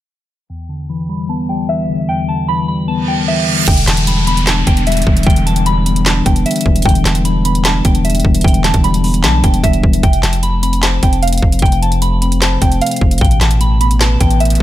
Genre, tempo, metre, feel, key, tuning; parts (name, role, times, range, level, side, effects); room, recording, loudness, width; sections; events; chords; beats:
hip hop, trap; 151 BPM; 4/4; half-time; E phrygian; A4 = 438 Hz
soft synth bell; melody; 0.5-14.6 s; E5 to B5; -20 LUFS; equal; chorus, phaser, low-pass filter, ping-pong delay
mellow tine electric piano; accompaniment; 0.5-14.6 s; E2 to C5; -17 LUFS; left 2 dB; medium stereo tremolo, low-pass filter
reverse cymbal, downlifter and riser; sound effects; 3.0-6.9, 13.7-14.6 s; -21 LUFS; right 3 dB
long sustained 808-style bass; bass; 3.7-14.6 s; E1 to B1; -15 LUFS; equal
trap drum kit; drums; 3.7-14.6 s; crash cymbal, handclaps, hi-hat, kick drum, snare drum; -14 LUFS; equal
little or no reverb; -11 LUFS; side -14 dB against mid
0.5-3.7 A section; 3.7-14.6 B section
filter sweep 0.5-3.7; reverse cymbal 3.0-3.7
0.5 Em7; 10.0 F; 13.2 Asus2
| 0.50 0.89 1.29 1.69 | 2.09 2.48 2.88 3.28 | 3.68 4.07 4.47 4.87 | 5.26 5.66 6.06 6.46 | 6.86 7.25 7.65 8.05 | 8.44 8.84 9.24 9.64 | 10.03 10.43 10.83 11.22 | 11.62 12.02 12.42 12.81 | 13.21 13.61 14.01 14.40